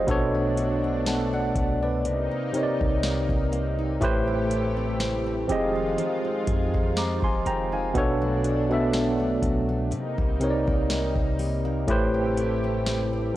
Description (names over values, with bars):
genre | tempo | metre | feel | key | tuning
contemporary R&B | 61 BPM | 4/4 | swing 54% on 16ths | unclear | A4 = 442 Hz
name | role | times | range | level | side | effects
tine electric piano | accompaniment | 0.0-13.4 s | A2 to D6 | -25 LUFS | right 1 dB | medium stereo tremolo
lush unison pad | sustained chords | 0.0-13.3 s | B2 to G4 | -32 LUFS | equal | chorus
picked steel-string acoustic guitar | arpeggios | 0.0-13.4 s | A2 to Ab4 | -33 LUFS | left 3 dB | analog delay
warm 808-style bass | bass | 0.0-13.3 s | F1 to C3 | -31 LUFS | equal | tube saturation
booming analog drum machine | drums | 0.1-13.1 s | hi-hat, kick drum, snare drum | -28 LUFS | equal | overdrive, vintage 12-bit sampler grit
room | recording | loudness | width
digital ambience | dry, gritty hardware recording | -22 LUFS | side -14 dB against mid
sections
0.0-13.4 A section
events
none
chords
0.1 Bm7; 2.0 Cm7; 4.0 Am7; 5.5 Fm7; 7.9 Bm7; 9.9 Cm7; 11.9 Am7